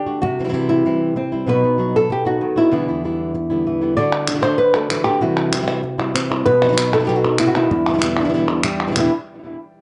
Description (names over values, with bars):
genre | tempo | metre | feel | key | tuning
flamenco | 193 BPM | 4/4 | straight | E minor | A4 = 440 Hz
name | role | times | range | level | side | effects
flamenco guitar | melody | 0.0-9.1 s | E2 to D5 | -20 LUFS | equal | analog delay
flamenco guitar | stabs | 0.1-9.1 s | E2 to F#4 | -25 LUFS | equal | analog delay
palmas hand claps | percussion | 4.1-9.0 s | none | -26 LUFS | equal | none
room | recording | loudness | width
wet studio reverb, RT60 0.6 s | nothing above 10.9 kHz | -18 LUFS | mono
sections
0.0-9.0 A section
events
none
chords
0.2 C; 1.5 B; 2.7 Em7; 4.0 D; 5.2 C; 6.5 B; 7.7 Em7